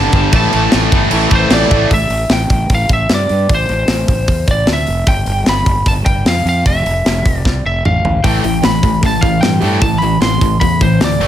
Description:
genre	hard rock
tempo	152 BPM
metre	4/4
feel	straight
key	A minor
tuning	A4 = 438 Hz
part	lightly driven lead guitar	melody	0.0-11.3 s	C5 to C6	-17 LUFS	equal	slapback echo
part	crunchy overdriven guitar	riff	0.0-1.9, 8.2-11.3 s	G2 to A3	-18 LUFS	left 10 dB	spring reverb
part	distorted electric guitar	riff	0.0-1.9, 8.2-11.3 s	G2 to A3	-18 LUFS	right 10 dB	overdrive
part	heavy high-gain guitar	riff	0.0-1.9 s	G2 to A3	-20 LUFS	equal	distortion
part	fuzz fingered electric bass	bass	0.0-11.3 s	F1 to G2	-17 LUFS	equal	overdrive
part	tight metal drum kit	drums	0.1-11.3 s	crash cymbal, hi-hat, kick drum, snare drum, toms	-15 LUFS	equal	none
room	light reverb, studio reverb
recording	none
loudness	-11 LUFS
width	side -11 dB against mid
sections	0.0-1.9 A section; 1.9-11.3 B section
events	drum fill 7.5-8.2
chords	0.3 A5; 1.9 Am; 5.1 G; 6.7 F; 8.2 A5

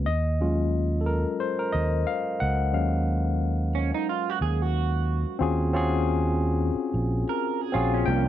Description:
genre	R&B, neo-soul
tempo	90 BPM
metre	4/4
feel	swing 61% on 16ths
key	unclear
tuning	A4 = 441 Hz
part	barky tine electric piano	accompaniment	0.0-8.3 s	F3 to G5	-27 LUFS	left 3 dB	overdrive, auto-pan
part	fingered electric bass	bass	0.0-8.3 s	Bb1 to Eb2	-25 LUFS	right 1 dB	none
part	electric guitar through a small old amp	second line	3.8-8.3 s	Db4 to Bb4	-29 LUFS	right 14 dB	lush chorus
part	tonewheel organ	sustained chords	8.1-8.3 s	C3 to F4	-28 LUFS	right 7 dB	slow rotary speaker, chorus vibrato
room	little or no reverb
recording	dark, warm production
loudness	-23 LUFS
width	side -11 dB against mid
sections	0.0-5.4 A section; 5.4-8.1 B section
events	tine electric piano solo 0.0-5.4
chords	0.1 Ebm11

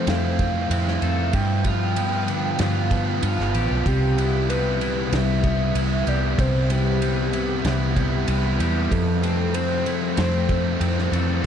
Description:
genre	rock, shoegaze and dream pop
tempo	95 BPM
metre	4/4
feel	straight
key	C major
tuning	A4 = 440 Hz
part	pure sine lead	melody	0.0-11.1 s	G4 to G5	-28 LUFS	equal	chorus, diffuse ambient delay
part	twangy electric guitar	arpeggios	0.0-11.4 s	F3 to A4	-35 LUFS	left 5 dB	lush chorus, diffuse ambient delay
part	biting overdriven guitar	riff	0.0-11.5 s	F2 to F4	-27 LUFS	right 8 dB	reverse reverb
part	thick fuzz guitar	riff	0.0-11.5 s	G2 to F4	-26 LUFS	left 7 dB	distortion, wide subtle chorus
part	vintage muted fingered electric bass	bass	0.0-11.4 s	G1 to G2	-24 LUFS	equal	none
part	loose indie drum kit	drums	0.1-11.3 s	kick drum, ride cymbal, snare drum	-28 LUFS	equal	vintage 12-bit sampler grit
room	moderate huge ambient reverb, RT60 6.9 s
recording	dreamy mix soaked in reverb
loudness	-19 LUFS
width	side -8 dB against mid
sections	0.0-11.5 A section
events	none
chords	0.0 Fmaj7; 1.3 G7; 3.9 Cmaj7; 8.9 Fmaj7

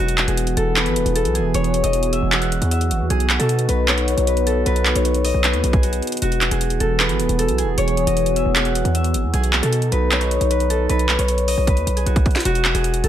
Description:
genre	hip hop, trap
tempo	154 BPM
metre	4/4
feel	half-time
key	E major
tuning	A4 = 440 Hz
part	concert harp	melody	0.0-13.1 s	F#4 to F#5	-22 LUFS	left 3 dB	none
part	dark analog pad	sustained chords	0.0-12.4 s	E3 to G#4	-25 LUFS	right 3 dB	chorus
part	hard-hitting 808-style bass	bass	0.0-13.1 s	E1 to B2	-20 LUFS	right 1 dB	none
part	trap drum kit	drums	0.1-13.1 s	handclaps, hi-hat, kick drum, snare drum	-21 LUFS	right 1 dB	overdrive
room	light reverb, digital ambience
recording	none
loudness	-16 LUFS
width	side -11 dB against mid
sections	0.0-12.5 A section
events	drum fill 11.7-12.5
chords	0.0 Eadd9; 3.1 B; 6.2 Eadd9; 9.3 B; 12.5 E

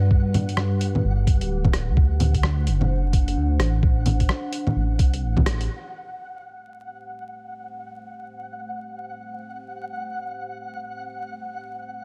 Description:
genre	future garage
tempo	129 BPM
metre	4/4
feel	swing 62% on 16ths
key	A dorian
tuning	A4 = 438 Hz
part	dark analog pad	sustained chords	0.0-12.0 s	G3 to F#5	-36 LUFS	equal	chorus, phaser, sidechain pumping
part	dark detuned saw bass	bass	0.0-5.7 s	D1 to G2	-24 LUFS	equal	sidechain pumping
part	flickering grainy texture	texture	0.0-12.0 s	F#5	-39 LUFS	equal	built-in reverb
part	electronic kick drum	drums	0.1-5.4 s	none	-22 LUFS	equal	none
part	lo-fi sampler-style drum kit	drums	0.3-5.7 s	bongos, hi-hat, rim click	-28 LUFS	equal	none
room	digital ambience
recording	vinyl crackle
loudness	-22 LUFS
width	mono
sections	0.0-5.7 A section; 5.7-12.0 B section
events	band accent 5.5; filter sweep on analog synth pad 5.7-12.0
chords	0.0 Gmaj7; 2.0 D7; 5.7 Am7

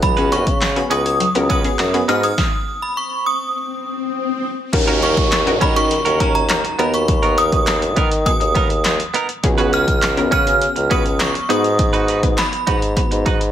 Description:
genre	dance-pop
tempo	102 BPM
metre	4/4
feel	straight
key	Eb minor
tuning	A4 = 440 Hz
part	synth chime	melody	0.0-13.2 s	Bb5 to F6	-20 LUFS	right 1 dB	ensemble chorus, phaser, ping-pong delay
part	mallet-like synth pluck	arpeggios	0.0-2.3 s	Gb3 to Ab6	-28 LUFS	left 2 dB	chorus, sidechain pumping, ping-pong delay
part	direct-recorded clean electric guitar	riff	0.0-13.4 s	B3 to Cb5	-24 LUFS	right 6 dB	lush chorus
part	mellow bassoon	bass	0.0-13.5 s	Db2 to Eb3	-20 LUFS	equal	sidechain pumping
part	punchy analog drum machine	drums	0.0-13.5 s	crash cymbal, handclaps, hi-hat, kick drum, snare drum	-19 LUFS	equal	none
part	analog pluck	accompaniment	0.2-13.5 s	Cb4 to B4	-24 LUFS	left 1 dB	chorus, sidechain pumping
part	swell and downlifter	sound effects	3.3-9.4 s	none	-26 LUFS	left 2 dB	none
part	group handclap	percussion	5.3-12.5 s	none	-30 LUFS	left 1 dB	none
room	light reverb, digital ambience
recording	none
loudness	-15 LUFS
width	side -10 dB against mid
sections	0.0-4.7 A section; 4.7-13.5 B section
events	stop 2.4-4.7; swell 3.3-4.7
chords	0.0 Db7sus4; 2.1 Abm7; 4.7 Ebm7; 6.8 Bmaj7/D#; 9.4 Db7sus4; 11.5 Abm7

